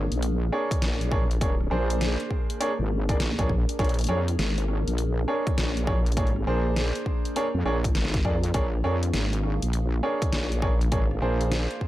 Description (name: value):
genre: glitch hop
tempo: 101 BPM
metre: 4/4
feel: swing 64% on 16ths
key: unclear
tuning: A4 = 440 Hz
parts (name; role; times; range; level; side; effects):
- warbly tape-like pad; sustained chords; 0.0-11.9 s; Bb3 to F5; -35 LUFS; equal; chorus, built-in reverb, sidechain pumping
- wobble bass; bass; 0.0-11.7 s; Ab1 to F2; -26 LUFS; equal; chorus, tube saturation
- dubstep drum kit; drums; 0.1-11.8 s; hi-hat, rim click, snare drum; -32 LUFS; left 1 dB; none
- bright baby grand piano; stabs; 0.5-11.9 s; D4 to D5; -30 LUFS; right 1 dB; sidechain pumping, analog delay
- electronic kick drum; drums; 0.7-11.9 s; none; -26 LUFS; equal; none
room: little or no reverb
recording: dry, gritty hardware recording, transformer saturation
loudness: -23 LUFS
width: side -15 dB against mid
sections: 0.0-11.9 A section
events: none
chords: 0.0 Bb7#9